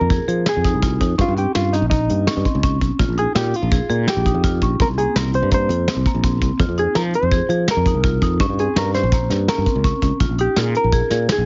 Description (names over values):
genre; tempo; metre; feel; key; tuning
progressive instrumental, band music in an uneven meter; 166 BPM; 5/4; straight; F minor; A4 = 438 Hz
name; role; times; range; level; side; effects
hollow-body jazz guitar; melody; 0.0-11.5 s; Eb4 to C5; -24 LUFS; equal; none
sustaining fretless electric bass; bass; 0.0-11.5 s; Bb1 to F3; -22 LUFS; equal; none
marimba with hard mallets; arpeggios; 0.1-11.3 s; Bb3 to Ab4; -28 LUFS; equal; none
soft brush drum kit; drums; 0.1-11.4 s; hi-hat, kick drum, snare drum; -23 LUFS; equal; none
room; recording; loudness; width
little or no reverb; heavily compressed radio sound, multiband compression, nothing above 7.5 kHz; -18 LUFS; mono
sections
0.0-11.5 A section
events
none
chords
0.0 Fm7; 1.2 Eb; 3.0 Bb7(no3); 4.8 C5; 6.6 Fm7; 8.4 Bbm69; 10.2 Bb7(no3)